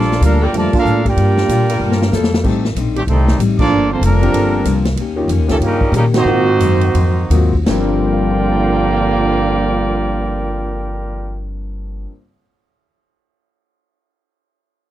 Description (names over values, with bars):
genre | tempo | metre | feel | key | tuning
jazz, big band swing | 161-189 BPM | 4/4 | swing 62% on 8ths | G minor | A4 = 438 Hz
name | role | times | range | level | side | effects
clear trumpet section | melody | 0.0-11.4 s | G3 to A5 | -20 LUFS | equal | none
warm trombone section | second line | 0.0-11.4 s | G2 to G4 | -19 LUFS | right 6 dB | none
picked steel-string acoustic guitar | accompaniment | 0.0-12.2 s | G2 to A4 | -23 LUFS | left 7 dB | none
upright bass | bass | 0.0-12.0 s | F1 to Bb2 | -17 LUFS | equal | none
swinging big-band drum kit | drums | 0.0-7.8 s | china cymbal, crash cymbal, hi-hat, kick drum, ride cymbal, snare drum | -20 LUFS | left 1 dB | none
warm saxophone section | sustained chords | 0.4-2.4 s | G3 to Bb4 | -23 LUFS | equal | none
warm concert grand piano | accompaniment | 2.4-12.4 s | G2 to C7 | -22 LUFS | left 3 dB | none
room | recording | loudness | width
little or no reverb | dry, close 1970s-style studio recording | -12 LUFS | side -13 dB against mid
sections
0.0-2.4 A section; 2.4-7.7 B section; 7.7-10.7 C section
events
band accent 0.7, 3.5, 6.1; drum fill 1.8-2.4; slowing down 5.0-7.7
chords
0.0 Gm9; 2.4 Am7b5; 3.7 Gm11; 5.0 Eb7; 6.3 Ab13; 7.7 Gm11